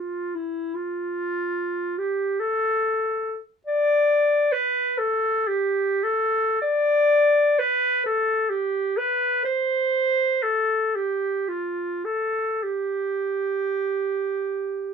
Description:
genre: classical, free, expressive piece for unaccompanied clarinet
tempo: 29-50 BPM (dotted quarters)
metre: 6/8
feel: rubato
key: F major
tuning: A4 = 440 Hz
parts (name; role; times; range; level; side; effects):
- clear clarinet; solo; 0.0-14.9 s; E4 to D5; -21 LUFS; equal; none
room: light reverb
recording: close, detailed microphones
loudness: -21 LUFS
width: side -6 dB against mid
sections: 0.0-14.9 A section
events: none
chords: none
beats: | 1.16 2.40 | 3.66 4.97 | 6.62 8.05 | 9.44 10.95 | 12.63 14.39

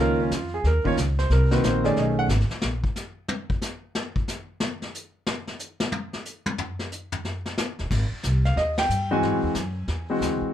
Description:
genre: jazz piano trio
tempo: 182 BPM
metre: 4/4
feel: swing 64% on 8ths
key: Ab major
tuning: A4 = 439 Hz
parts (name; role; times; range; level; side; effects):
- warm concert grand piano; melody; 0.0-2.3, 8.5-10.5 s; Eb3 to Ab5; -23 LUFS; equal; none
- upright bass; bass; 0.0-2.8, 7.8-10.4 s; Eb1 to Ab2; -24 LUFS; equal; none
- vintage brush drum kit; drums; 0.3-10.5 s; brushed snare drum, crash cymbal, hi-hat, kick drum, ride cymbal, snare drum, toms; -29 LUFS; left 2 dB; none
room: light reverb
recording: none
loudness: -23 LUFS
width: side -11 dB against mid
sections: 0.0-7.9 A section; 7.9-10.5 B section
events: grand piano solo 0.0-7.9; drum solo 2.6-7.9; band accent 8.7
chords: 0.0 Db69; 1.3 Cm7b5; 2.0 B13; 2.6 N.C.; 7.9 Abmaj7; 9.2 Abaug7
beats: 0.32 0.65 0.98 | 1.31 1.64 1.97 2.30 | 2.63 2.96 3.29 3.62 | 3.95 4.28 4.61 4.94 | 5.27 5.60 5.93 6.26 | 6.59 6.92 7.25 7.58 | 7.91 8.24 8.57 8.90 | 9.23 9.56 9.89 10.22

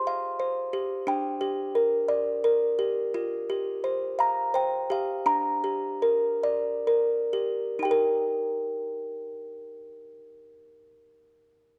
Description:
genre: children's music, lullaby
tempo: 38-60 BPM (dotted quarters)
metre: 6/8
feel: rubato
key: Eb major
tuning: A4 = 440 Hz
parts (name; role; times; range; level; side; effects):
- music box; solo; 0.0-11.1 s; D4 to Bb5; -27 LUFS; equal; none
room: light reverb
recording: none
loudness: -27 LUFS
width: mono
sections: 0.0-3.1 A section; 3.1-7.8 B section; 7.8-11.8 C section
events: slowing down 3.1-7.8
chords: 0.0 Fsus2; 1.1 Bb6; 3.1 Fsus2; 5.3 Bb6; 7.8 Eb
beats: 0.07 | 1.07 2.09 | 3.13 4.18 | 5.26 6.43 | 7.84 9.40 | 10.91

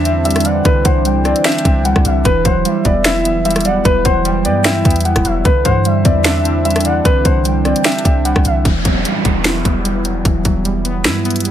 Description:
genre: hip hop, trap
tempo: 150 BPM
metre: 4/4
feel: half-time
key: E minor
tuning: A4 = 444 Hz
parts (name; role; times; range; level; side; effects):
- dark concert grand piano; melody; 0.0-8.6 s; B4 to F#5; -18 LUFS; left 2 dB; low-pass filter
- gliding portamento lead; second line; 0.0-8.6 s; E5 to G5; -24 LUFS; left 2 dB; chorus, phaser, tremolo, ping-pong delay
- warbly lo-fi synth keys; accompaniment; 0.0-11.5 s; D3 to E4; -18 LUFS; right 3 dB; chorus, low-pass filter
- dark analog pad; sustained chords; 0.0-8.6 s; E3 to E4; -25 LUFS; left 2 dB; chorus
- clean 808-style bass; bass; 0.0-11.5 s; E1 to G2; -18 LUFS; equal; none
- trap drum kit; drums; 0.1-11.5 s; finger snaps, hi-hat, kick drum, rim click, snare drum; -16 LUFS; equal; overdrive
- downlifter; sound effects; 8.7-11.5 s; none; -23 LUFS; equal; none
room: digital ambience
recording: none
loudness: -12 LUFS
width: side -10 dB against mid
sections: 0.0-8.7 A section; 8.7-11.5 B section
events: none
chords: 0.0 Cadd9; 2.3 Emadd9; 5.5 Cadd9; 8.7 Emadd9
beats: 0.25 | 0.65 1.05 1.45 1.85 | 2.25 2.65 3.05 3.45 | 3.85 4.25 4.65 5.05 | 5.45 5.85 6.25 6.65 | 7.05 7.45 7.85 8.25 | 8.65 9.05 9.45 9.85 | 10.25 10.65 11.05 11.45

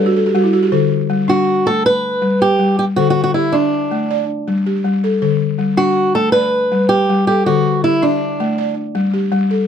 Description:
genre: west african traditional, West African string and xylophone music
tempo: 107 BPM (dotted quarters)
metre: 12/8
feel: straight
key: D major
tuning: A4 = 441 Hz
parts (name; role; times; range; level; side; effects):
- balafon; arpeggios; 0.0-9.7 s; D3 to D5; -16 LUFS; left 2 dB; none
- fingerpicked swing-style acoustic guitar; melody; 1.3-8.7 s; D4 to B4; -16 LUFS; right 1 dB; none
room: light reverb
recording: close, detailed microphones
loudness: -13 LUFS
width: side -8 dB against mid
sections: 0.0-9.7 A section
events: balafon fill 0.0-0.7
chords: 0.0 N.C.; 0.7 D; 1.9 N.C.; 3.0 D5; 4.1 G5; 5.2 D; 6.3 G; 7.5 D; 8.6 G5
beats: 0.17 | 0.73 1.29 1.85 2.41 | 2.97 3.53 4.09 4.66 | 5.22 5.78 6.34 6.90 | 7.46 8.02 8.58 9.14

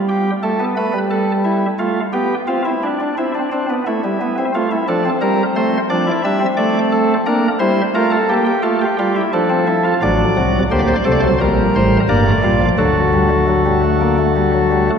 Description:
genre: classical, baroque-style 4-part fugue for pipe organ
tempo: 87 BPM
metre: 4/4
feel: straight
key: F major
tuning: A4 = 440 Hz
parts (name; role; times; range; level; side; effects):
- chamber organ, cornet; solo; 0.0-15.0 s; G1 to E5; -14 LUFS; equal; none
room: wet church reverb, RT60 3.5 s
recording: heard from further back in the room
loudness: -14 LUFS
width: side -6 dB against mid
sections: 0.0-10.0 A section; 10.0-15.0 B section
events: none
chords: 0.4 A5; 1.8 F/A; 3.2 C; 4.5 F; 5.9 Dm/F; 7.3 Bb; 8.6 F; 10.0 D7/A; 11.4 Gm; 12.8 D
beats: 0.44 1.11 | 1.79 2.48 3.16 3.85 | 4.54 5.22 5.90 6.59 | 7.27 7.96 8.65 9.34 | 10.04 10.73 11.42 12.10 | 12.78 13.48 14.18 14.89

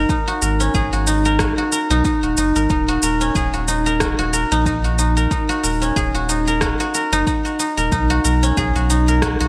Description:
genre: organic downtempo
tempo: 92 BPM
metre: 4/4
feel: swing 56% on 16ths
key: Eb minor pentatonic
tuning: A4 = 436 Hz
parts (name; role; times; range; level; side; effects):
- guzheng; arpeggios; 0.0-9.5 s; Db4 to Bb4; -21 LUFS; equal; low-pass filter, digital delay
- warm sub bass; bass; 0.0-9.5 s; Eb1 to Cb2; -23 LUFS; equal; sidechain pumping
- electronic cabasa and rim click; drums; 0.1-9.5 s; none; -27 LUFS; equal; gated reverb
- electronic kick drum; drums; 0.1-9.4 s; none; -26 LUFS; equal; none
room: light reverb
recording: bright 1980s-style digital production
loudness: -18 LUFS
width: mono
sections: 0.0-9.5 A section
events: none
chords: 0.1 Ab7(no3); 2.7 Ebm7; 7.9 B6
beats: | 0.09 0.75 1.40 2.05 | 2.70 3.35 4.01 4.66 | 5.31 5.96 6.62 7.27 | 7.92 8.57 9.22

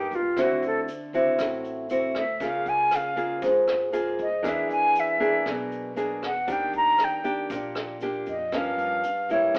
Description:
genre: bossa nova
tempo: 118 BPM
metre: 4/4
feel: straight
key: unclear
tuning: A4 = 441 Hz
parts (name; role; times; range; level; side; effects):
- reedy concert flute; melody; 0.0-9.6 s; F4 to Bb5; -27 LUFS; equal; none
- nylon-string guitar; accompaniment; 0.0-9.6 s; G2 to Ab4; -29 LUFS; equal; none
- upright bass; bass; 0.0-9.6 s; Ab1 to G2; -50 LUFS; equal; none
- jazz brush drum kit; drums; 0.1-9.6 s; hi-hat, kick drum, rim click; -39 LUFS; equal; none
- egg shaker; percussion; 0.1-9.6 s; none; -57 LUFS; equal; none
room: wet studio reverb, RT60 0.8 s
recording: heard from further back in the room, telephone sound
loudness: -26 LUFS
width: mono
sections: 0.0-9.6 A section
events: flute solo 0.0-9.6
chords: 0.4 D9; 2.4 Db6; 4.4 E7#11; 6.5 Ebmaj7; 8.5 Gm7b5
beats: | 0.37 0.88 1.39 1.90 | 2.41 2.92 3.42 3.94 | 4.44 4.95 5.46 5.97 | 6.48 6.99 7.50 8.01 | 8.52 9.03 9.54

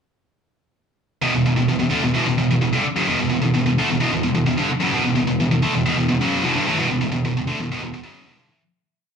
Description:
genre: metal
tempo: 130 BPM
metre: 4/4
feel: straight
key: E minor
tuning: A4 = 439 Hz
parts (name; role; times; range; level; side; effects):
- scooped high-gain guitar; solo; 1.2-8.6 s; E2 to A3; -17 LUFS; equal; distortion
room: wet large studio reverb, RT60 1.3 s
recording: band playing live in one room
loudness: -17 LUFS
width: side -6 dB against mid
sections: 1.2-8.6 riff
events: fade-out 6.8-8.6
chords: 1.2 E5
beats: | 1.23 1.69 2.15 2.61 | 3.07 3.54 4.00 4.46 | 4.92 5.38 5.85 6.31 | 6.77 7.23 7.69 8.15

